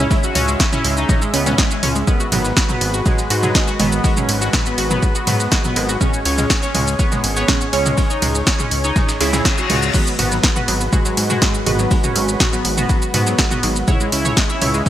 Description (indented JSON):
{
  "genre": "melodic techno",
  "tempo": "122 BPM",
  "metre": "4/4",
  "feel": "straight",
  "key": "G# minor",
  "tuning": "A4 = 440 Hz",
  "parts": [
    { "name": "resonant sweep polysynth", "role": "melody", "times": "0.0-14.9 s", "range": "G#3 to F#4", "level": "-24 LUFS", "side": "left 1 dB", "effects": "chorus, sidechain pumping, digital delay" },
    { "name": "lush unison pad", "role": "sustained chords", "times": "0.0-14.9 s", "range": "G#3 to E5", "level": "-26 LUFS", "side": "equal", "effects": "chorus, sidechain pumping" },
    { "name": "analog pluck", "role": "arpeggios", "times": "0.0-14.8 s", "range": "F#3 to C#5", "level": "-24 LUFS", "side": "equal", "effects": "chorus, sidechain pumping, digital delay" },
    { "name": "filtered dub chord stab", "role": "stabs", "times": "0.0-14.9 s", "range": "G#2 to C#4", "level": "-26 LUFS", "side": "right 4 dB", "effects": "phaser, sidechain pumping, digital delay" },
    { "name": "fat analog bass", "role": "bass", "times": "0.0-14.8 s", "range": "G#1 to G#2", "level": "-21 LUFS", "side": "equal", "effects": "sidechain pumping" },
    { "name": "dusty soul sampler-style drum kit", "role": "drums", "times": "0.1-14.9 s", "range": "hi-hat, ride cymbal, snare drum", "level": "-32 LUFS", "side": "right 1 dB", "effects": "none" },
    { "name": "electronic kick drum", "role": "drums", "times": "0.1-14.9 s", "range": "none", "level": "-18 LUFS", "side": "equal", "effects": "none" },
    { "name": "punchy analog drum machine", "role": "drums", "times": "0.1-14.9 s", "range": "crash cymbal, hi-hat, ride cymbal, shaker, snare drum, toms", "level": "-20 LUFS", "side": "right 1 dB", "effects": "none" },
    { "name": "reverse cymbal", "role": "sound effects", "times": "9.2-9.9 s", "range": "none", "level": "-25 LUFS", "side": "left 6 dB", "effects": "none" }
  ],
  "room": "moderate lush hall reverb, RT60 2.3 s",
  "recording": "bright 1980s-style digital production",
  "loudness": "-14 LUFS",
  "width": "side -12 dB against mid",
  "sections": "0.0-14.9 A section",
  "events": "reverse cymbal 9.2-9.9",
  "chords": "0.0 C#m; 2.1 G#m7; 6.0 C#5; 9.9 G#m7; 13.9 C#m"
}